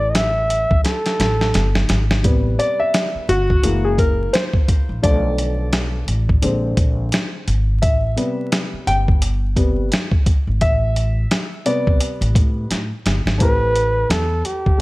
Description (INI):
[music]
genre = hip hop, jazz-hop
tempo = 86 BPM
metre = 4/4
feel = swing 59% on 16ths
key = A minor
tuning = A4 = 436 Hz
[part]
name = mellow flugelhorn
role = melody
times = 0.0-1.9, 13.4-14.8 s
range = G4 to E5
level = -20 LUFS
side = right 1 dB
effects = none
[part]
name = dark grand piano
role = accompaniment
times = 0.0-14.8 s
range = C3 to G5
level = -21 LUFS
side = left 1 dB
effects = none
[part]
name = upright bass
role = bass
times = 0.0-14.4 s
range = F#1 to A2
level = -20 LUFS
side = equal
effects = none
[part]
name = dusty soul sampler-style drum kit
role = drums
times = 0.1-14.8 s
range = hi-hat, kick drum, snare drum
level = -18 LUFS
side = equal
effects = none
[sound]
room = light reverb, studio ambience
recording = vinyl crackle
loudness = -16 LUFS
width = side -20 dB against mid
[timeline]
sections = 0.0-2.2 A section; 2.2-13.4 B section; 13.4-14.8 C section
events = drum fill 0.8-2.2, 12.7-13.4; grand piano solo 2.2-13.4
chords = 0.0 Am7; 3.6 F#7; 5.0 Bm7b5; 6.4 Bb9; 7.8 Am7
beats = 0.15 0.85 1.54 | 2.24 2.94 3.64 4.33 | 5.03 5.73 6.43 7.12 | 7.82 8.52 9.22 9.91 | 10.61 11.31 12.01 12.71 | 13.40 14.10 14.80